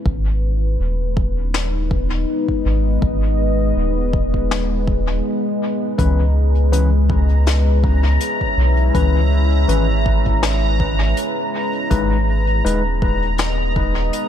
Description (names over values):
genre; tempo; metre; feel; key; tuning
ambient dub; 81 BPM; 4/4; swing 55% on 16ths; G# minor; A4 = 440 Hz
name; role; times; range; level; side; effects
deep dark ambient pad; sustained chords; 0.0-14.3 s; G#3 to E5; -22 LUFS; left 1 dB; chorus, built-in reverb
soft dub sub bass; bass; 0.1-14.1 s; D#1 to C#2; -17 LUFS; equal; none
electronic kick drum; drums; 0.1-13.9 s; none; -22 LUFS; equal; none
vintage brush drum kit; drums; 1.5-14.3 s; hi-hat, snare drum; -26 LUFS; left 5 dB; dub echo
overdriven tine electric piano; stabs; 6.0-12.8 s; E3 to B4; -26 LUFS; moving between left 10 dB and left 2 dB; auto-pan, dub echo
bubbling stepped-filter texture; texture; 6.3-14.3 s; A#5; -26 LUFS; equal; chorus, built-in reverb
room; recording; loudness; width
studio ambience; echo-heavy mix; -15 LUFS; side -10 dB against mid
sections
0.0-14.3 A section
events
none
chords
0.1 G#m; 6.0 C#m7; 11.9 G#m